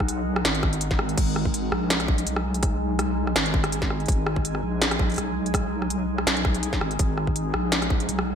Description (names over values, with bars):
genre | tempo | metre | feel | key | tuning
half-time drum and bass | 165 BPM | 4/4 | swing 54% on 16ths, half-time | G# minor | A4 = 440 Hz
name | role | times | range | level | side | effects
deep dark ambient pad | sustained chords | 0.0-8.3 s | G#3 to G#5 | -29 LUFS | equal | chorus, built-in reverb, vintage 12-bit sampler grit, sidechain pumping
deep soft wobble bass | bass | 0.0-8.3 s | G#1 to B1 | -28 LUFS | equal | chorus
electronic kick drum | drums | 0.0-8.0 s | none | -24 LUFS | equal | none
industrial drum kit | drums | 0.0-8.3 s | crash cymbal, hi-hat, rim click, snare drum | -26 LUFS | equal | gated reverb
room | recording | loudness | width
light reverb, digital ambience | bright 1980s-style digital production | -22 LUFS | side -8 dB against mid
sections
0.0-8.3 A section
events
none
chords
0.0 G#5